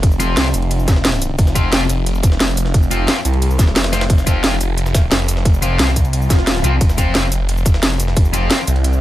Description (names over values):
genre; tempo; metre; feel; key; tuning
dark technical drum and bass; 177 BPM; 4/4; straight; unclear; A4 = 442 Hz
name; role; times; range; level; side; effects
phased detuned saw bass; bass; 0.0-9.0 s; F1 to C2; -17 LUFS; equal; phaser, tube saturation, sidechain pumping
drum and bass drum kit; drums; 0.0-9.0 s; hi-hat, shaker, snare drum; -18 LUFS; equal; none
electronic kick drum; drums; 0.0-8.2 s; none; -13 LUFS; equal; none
jungle sampler-style drum kit; drums; 0.0-8.9 s; ride cymbal, snare drum; -27 LUFS; right 1 dB; high-pass filter on cymbals, high-pass filter on snare, high-pass filter on room
sludgy distorted guitar; stabs; 0.2-8.6 s; F3 to F4; -24 LUFS; left 3 dB; overdrive, vintage 12-bit sampler grit, tape echo
swell; sound effects; 6.2-6.8 s; none; -26 LUFS; left 2 dB; none
room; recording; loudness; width
digital ambience; none; -13 LUFS; side -14 dB against mid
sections
0.0-9.0 A section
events
swell 6.2-6.8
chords
0.0 F5